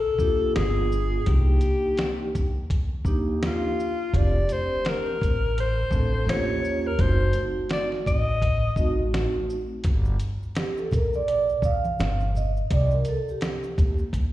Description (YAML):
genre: hip hop, jazz-hop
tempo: 84 BPM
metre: 4/4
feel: swing 60% on 16ths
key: unclear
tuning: A4 = 440 Hz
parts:
  - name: clear alto saxophone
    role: melody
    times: 0.0-9.1 s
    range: F4 to D#5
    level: -27 LUFS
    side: left 3 dB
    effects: slapback echo
  - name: upright bass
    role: bass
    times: 0.0-14.3 s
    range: F1 to Eb2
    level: -24 LUFS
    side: equal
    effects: none
  - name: vibraphone with soft mallets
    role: accompaniment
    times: 0.2-14.0 s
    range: A3 to F5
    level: -28 LUFS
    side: right 2 dB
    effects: slapback echo
  - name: dusty soul sampler-style drum kit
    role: drums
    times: 0.2-14.3 s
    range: hi-hat, kick drum, shaker, snare drum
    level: -27 LUFS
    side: equal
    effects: none
  - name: maracas and congas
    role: percussion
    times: 9.8-14.3 s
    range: none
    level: -37 LUFS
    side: right 1 dB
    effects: none
room: light reverb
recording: live gig heard through the venue's PA, recital hall reverb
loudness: -22 LUFS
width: side -15 dB against mid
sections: 0.0-9.8 A section; 9.8-14.3 B section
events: vibraphone solo 9.8-14.3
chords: 0.0 Gm7; 0.6 G7b9; 1.3 Cm9 (rootless); 4.1 F6; 6.3 Eb9; 7.0 F#dim7; 9.8 Gm; 12.0 Ebadd9/G; 12.7 Cm